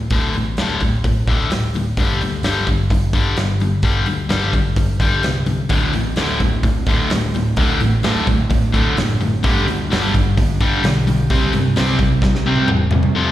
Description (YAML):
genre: hard rock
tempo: 129 BPM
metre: 4/4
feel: straight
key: unclear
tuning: A4 = 440 Hz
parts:
  - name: cranked stack guitar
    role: riff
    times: 0.0-13.3 s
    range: D2 to C4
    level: -19 LUFS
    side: left 3 dB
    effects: overdrive, slapback echo
  - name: hollow-body short-scale picked electric bass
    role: bass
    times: 0.0-13.1 s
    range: D1 to G2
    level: -21 LUFS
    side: equal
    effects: none
  - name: big rock drum kit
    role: drums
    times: 0.1-13.1 s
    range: hi-hat, kick drum, snare drum, toms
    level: -20 LUFS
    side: equal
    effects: none
  - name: sludgy distorted guitar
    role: riff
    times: 5.7-13.1 s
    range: D2 to C4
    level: -23 LUFS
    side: right 10 dB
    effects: overdrive, slapback echo
room: light reverb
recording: live gig heard through the venue's PA, recital hall reverb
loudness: -15 LUFS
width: side -13 dB against mid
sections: 0.0-13.2 A section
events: drum fill 12.2-13.2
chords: 0.0 D5; 2.0 G5; 5.7 D5; 9.4 G; 11.3 C